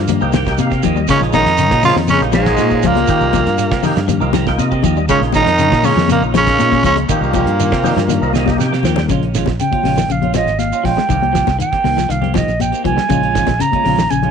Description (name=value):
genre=afrobeat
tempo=120 BPM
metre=4/4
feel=straight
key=Bb dorian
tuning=A4 = 440 Hz
part: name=electric guitar at the edge of break-up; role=arpeggios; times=0.0-14.3 s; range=Db3 to Ab3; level=-21 LUFS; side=left 10 dB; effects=ensemble chorus
part: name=fingered electric bass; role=bass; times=0.0-14.3 s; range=Ab1 to C3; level=-19 LUFS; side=equal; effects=none
part: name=damped 70s drum kit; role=drums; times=0.1-14.3 s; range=hi-hat, kick drum, snare drum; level=-22 LUFS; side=right 3 dB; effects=none
part: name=congas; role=percussion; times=0.1-14.3 s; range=none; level=-21 LUFS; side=left 14 dB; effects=none
part: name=shekere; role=percussion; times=0.1-14.2 s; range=none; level=-27 LUFS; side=right 6 dB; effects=none
part: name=percussive tonewheel organ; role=accompaniment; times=0.2-9.1 s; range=Bb3 to Bb5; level=-24 LUFS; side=equal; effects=slow rotary speaker
part: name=semi-hollow electric guitar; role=stabs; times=0.2-14.3 s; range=Eb3 to G4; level=-24 LUFS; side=right 13 dB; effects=phaser
part: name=raspy tenor saxophone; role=melody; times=1.1-8.6 s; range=Ab3 to F4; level=-17 LUFS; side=right 4 dB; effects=tape echo
part: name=brilliant trombone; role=second line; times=1.1-8.6 s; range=Ab2 to F3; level=-27 LUFS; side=right 11 dB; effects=none
part: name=clear baritone saxophone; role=second line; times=1.1-8.6 s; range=Ab2 to F3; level=-23 LUFS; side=left 12 dB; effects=none
part: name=concert flute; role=melody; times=9.6-14.3 s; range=Eb5 to Bb5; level=-17 LUFS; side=right 5 dB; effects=none
room=light reverb, small room ambience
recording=1960s-style stereo with parts hard left and right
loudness=-12 LUFS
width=side -7 dB against mid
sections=0.0-9.1 A section; 9.1-14.3 B section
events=tonewheel organ fill 0.1-1.1, 4.1-5.1, 8.1-9.1; drum fill 8.3-9.1; flute solo 9.1-14.3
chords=0.0 Cm7; 1.1 Bbm7; 3.1 Cm7; 5.1 Bbm7; 7.1 Cm7; 9.1 Bbm7; 11.1 Cm7; 13.1 Bbm7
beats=0.10 0.59 | 1.09 1.59 2.09 2.59 | 3.09 3.59 4.09 4.59 | 5.09 5.59 6.09 6.59 | 7.09 7.59 8.09 8.59 | 9.10 9.60 10.10 10.60 | 11.10 11.60 12.10 12.60 | 13.11 13.61 14.11